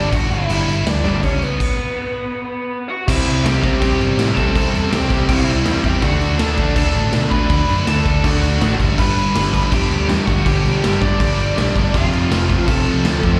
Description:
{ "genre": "punk rock", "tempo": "162 BPM", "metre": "4/4", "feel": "straight", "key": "unclear", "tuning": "A4 = 440 Hz", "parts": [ { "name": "lead guitar through a small cranked amp", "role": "melody", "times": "0.0-13.4 s", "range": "B3 to D6", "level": "-25 LUFS", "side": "equal", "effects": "overdrive, slapback echo" }, { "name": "biting overdriven guitar", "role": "riff", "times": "0.0-13.4 s", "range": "F2 to D4", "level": "-24 LUFS", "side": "equal", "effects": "slapback echo" }, { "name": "overdriven semi-hollow guitar", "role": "riff", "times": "0.0-13.4 s", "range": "F2 to D4", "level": "-27 LUFS", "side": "equal", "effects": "none" }, { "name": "overdriven semi-hollow guitar", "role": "riff", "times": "0.0-13.4 s", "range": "F2 to D4", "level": "-29 LUFS", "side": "equal", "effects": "none" }, { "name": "overdriven picked electric bass", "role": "bass", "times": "0.0-13.4 s", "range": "F1 to B2", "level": "-23 LUFS", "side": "equal", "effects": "none" }, { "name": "raw garage drum kit", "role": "drums", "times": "0.1-13.3 s", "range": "crash cymbal, kick drum, snare drum", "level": "-22 LUFS", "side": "equal", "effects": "none" } ], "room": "small room ambience", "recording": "live gig heard through the venue's PA, recital hall reverb", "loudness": "-17 LUFS", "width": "mono", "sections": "0.0-3.1 A section; 3.1-13.4 B section", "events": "half time 0.0-3.1; stop 1.6-3.1", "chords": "0.0 G; 3.1 C; 6.0 D; 8.8 G; 11.9 F" }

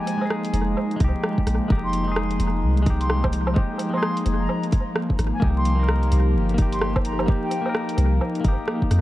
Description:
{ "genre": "future garage", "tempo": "129 BPM", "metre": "4/4", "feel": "swing 61% on 16ths", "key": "F minor", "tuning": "A4 = 440 Hz", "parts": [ { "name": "concert flute", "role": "melody", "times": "0.0-7.7 s", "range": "G5 to C6", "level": "-32 LUFS", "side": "equal", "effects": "tape echo" }, { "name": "clean electric guitar", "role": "accompaniment", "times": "0.0-9.0 s", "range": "Ab3 to Bb4", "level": "-30 LUFS", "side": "left 2 dB", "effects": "sidechain pumping, tape echo" }, { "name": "airy breathy pad", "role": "sustained chords", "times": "0.0-9.0 s", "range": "F3 to G4", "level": "-27 LUFS", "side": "equal", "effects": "chorus, sidechain pumping" }, { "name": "garage drum kit", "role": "drums", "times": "0.1-9.0 s", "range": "hi-hat, rim click, woodblock", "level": "-29 LUFS", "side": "right 1 dB", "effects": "analog delay" }, { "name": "soft 808-style bass", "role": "bass", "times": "0.5-9.0 s", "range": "F1 to F2", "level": "-22 LUFS", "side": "equal", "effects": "sidechain pumping" }, { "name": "electronic kick drum", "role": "drums", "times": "1.0-8.9 s", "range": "none", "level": "-21 LUFS", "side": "equal", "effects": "none" } ], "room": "digital ambience", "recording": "echo-heavy mix, vinyl crackle", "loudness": "-20 LUFS", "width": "side -15 dB against mid", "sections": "0.0-9.0 A section", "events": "none", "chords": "0.0 Fm9; 5.4 Cm7" }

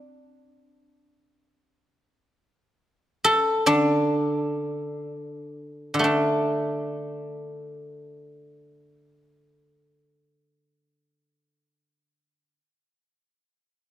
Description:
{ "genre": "chinese traditional, Chinese solo plucked strings", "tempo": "free time", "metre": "none", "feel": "none", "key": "unclear", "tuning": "A4 = 441 Hz", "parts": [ { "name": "guzheng", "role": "solo", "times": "0.0-12.6 s", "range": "D3 to A4", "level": "-22 LUFS", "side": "equal", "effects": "none" } ], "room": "moderate concert hall reverb, RT60 2.5 s", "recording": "none", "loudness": "-21 LUFS", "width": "side -12 dB against mid", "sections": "0.0-6.0 A section; 6.0-12.6 B section", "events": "slowing down 0.0-6.0", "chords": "none" }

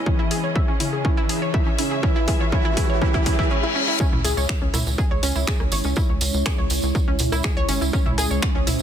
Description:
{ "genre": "melodic techno", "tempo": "122 BPM", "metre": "4/4", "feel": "straight", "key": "C# harmonic minor", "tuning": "A4 = 440 Hz", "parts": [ { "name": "deep dark ambient pad", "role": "sustained chords", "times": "0.0-8.8 s", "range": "G#3 to C#5", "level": "-31 LUFS", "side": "right 2 dB", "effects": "chorus, built-in reverb, sidechain pumping" }, { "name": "riser and reverse cymbal", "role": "sound effects", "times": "0.0-4.0 s", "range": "none", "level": "-29 LUFS", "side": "left 3 dB", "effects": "none" }, { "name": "dark studio string section", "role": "texture", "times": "0.0-3.5 s", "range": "C#4 to E5", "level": "-34 LUFS", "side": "left 1 dB", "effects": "sidechain pumping" }, { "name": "analog synth brass", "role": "melody", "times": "0.1-3.5 s", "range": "C#3 to E4", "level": "-27 LUFS", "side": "right 1 dB", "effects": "chorus, cassette tape, sidechain pumping, tape echo" }, { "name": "analog pluck", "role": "arpeggios", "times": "0.1-8.7 s", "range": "C#4 to E5", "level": "-27 LUFS", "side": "equal", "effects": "chorus, sidechain pumping, digital delay" }, { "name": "electronic kick drum", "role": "drums", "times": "0.1-8.5 s", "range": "none", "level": "-21 LUFS", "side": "equal", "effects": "overdrive" }, { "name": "techno drum kit", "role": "drums", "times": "0.3-8.8 s", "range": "finger snaps, hi-hat, rim click, toms", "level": "-28 LUFS", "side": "equal", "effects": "overdrive, sidechain pumping on hats, sidechain pumping on toms, soft clipping on snare" }, { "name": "tambourine", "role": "percussion", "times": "4.0-8.8 s", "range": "none", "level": "-30 LUFS", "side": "right 5 dB", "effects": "none" }, { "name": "tight sequencer bass", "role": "bass", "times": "4.1-8.8 s", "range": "G#1 to C#2", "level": "-24 LUFS", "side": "equal", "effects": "sidechain pumping" } ], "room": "digital ambience", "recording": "dense, heavily limited modern master, faint mains hum", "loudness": "-19 LUFS", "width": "side -9 dB against mid", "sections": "0.0-4.0 A section; 4.0-8.8 B section", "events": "build-up 0.0-4.0; riser 0.0-3.5; filter sweep on analog polysynth 0.0-4.0; drum fill 0.1-3.5; reverse cymbal 3.0-4.0; drop 4.0-8.8", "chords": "0.0 C#m" }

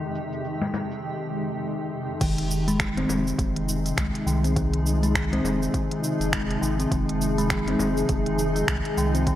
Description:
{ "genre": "organic downtempo", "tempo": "102 BPM", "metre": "4/4", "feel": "swing 59% on 16ths", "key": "F minor", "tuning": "A4 = 440 Hz", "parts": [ { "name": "granular cloud pad", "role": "sustained chords", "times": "0.0-9.4 s", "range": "F2 to Ab4", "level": "-28 LUFS", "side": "left 1 dB", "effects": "built-in reverb, sidechain pumping" }, { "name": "organic electronic drum kit", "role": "drums", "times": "0.2-9.4 s", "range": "congas, crash cymbal, finger snaps, hi-hat, shaker", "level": "-30 LUFS", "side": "left 1 dB", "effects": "low-pass filter on perc, low-pass filter on hats, low-pass filter on cymbals, low-pass filter on snare" }, { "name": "steel tongue drum", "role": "arpeggios", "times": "2.2-9.4 s", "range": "Eb3 to C4", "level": "-26 LUFS", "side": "equal", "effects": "diffuse ambient delay" }, { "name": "warm sub bass", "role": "bass", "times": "2.2-9.4 s", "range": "F1 to C2", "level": "-28 LUFS", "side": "equal", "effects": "sidechain pumping" }, { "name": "electronic kick drum", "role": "drums", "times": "2.2-9.4 s", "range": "none", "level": "-28 LUFS", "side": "equal", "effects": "overdrive" } ], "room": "moderate lush hall reverb, RT60 2.1 s", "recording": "dreamy mix soaked in reverb", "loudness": "-22 LUFS", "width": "side -12 dB against mid", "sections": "0.0-2.2 A section; 2.2-9.4 B section", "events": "none", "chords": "0.0 Ab/F; 2.2 Fm7" }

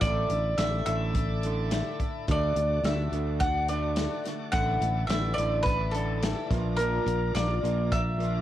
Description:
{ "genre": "folk rock and heartland rock", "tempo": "106 BPM", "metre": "4/4", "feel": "straight", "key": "unclear", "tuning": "A4 = 444 Hz", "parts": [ { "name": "bowl-back mandolin", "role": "melody", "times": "0.0-8.4 s", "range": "A4 to F#5", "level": "-30 LUFS", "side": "equal", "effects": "cassette tape" }, { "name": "picked twelve-string acoustic guitar", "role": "accompaniment", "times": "0.0-8.4 s", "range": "A2 to F#4", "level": "-37 LUFS", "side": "left 10 dB", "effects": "cassette tape" }, { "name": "bright tonewheel organ", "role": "sustained chords", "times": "0.0-8.4 s", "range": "D4 to D5", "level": "-41 LUFS", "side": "right 1 dB", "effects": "slow rotary speaker, overdrive, cassette tape" }, { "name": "electric guitar at the edge of break-up", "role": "riff", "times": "0.0-8.4 s", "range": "A2 to D4", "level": "-36 LUFS", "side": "right 9 dB", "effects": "cassette tape" }, { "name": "fingered electric bass", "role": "bass", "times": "0.0-8.4 s", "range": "A1 to D2", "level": "-29 LUFS", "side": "equal", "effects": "none" }, { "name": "natural country drum kit", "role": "drums", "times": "0.0-8.3 s", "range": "hi-hat, kick drum, snare drum", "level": "-32 LUFS", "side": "equal", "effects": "none" } ], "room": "light reverb", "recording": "home recording on cassette", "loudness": "-25 LUFS", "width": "side -12 dB against mid", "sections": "0.0-8.4 A section", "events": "none", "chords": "0.0 Asus4; 2.3 D; 4.5 Asus4; 6.5 Bb" }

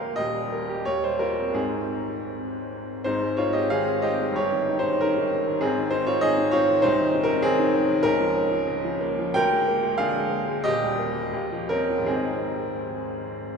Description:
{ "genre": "classical, romantic character piece for solo piano", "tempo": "77-101 BPM", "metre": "2/4", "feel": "rubato", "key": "Ab major", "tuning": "A4 = 440 Hz", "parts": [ { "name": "clear upright piano", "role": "solo", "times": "0.0-13.6 s", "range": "Eb1 to G5", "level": "-22 LUFS", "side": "equal", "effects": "none" } ], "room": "wet cathedral reverb, RT60 6.0 s", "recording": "recorded in a church or concert hall", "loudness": "-22 LUFS", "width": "side -5 dB against mid", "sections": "0.0-3.0 A section; 3.0-13.6 B section", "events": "none", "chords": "0.2 Eb; 0.9 Eb69; 1.6 Ab; 4.4 Eb7/G; 5.6 Ab; 6.8 Ab/C; 8.0 Bbm/Db; 9.4 Bb7/D; 10.6 Eb; 11.3 Eb13; 12.1 Ab" }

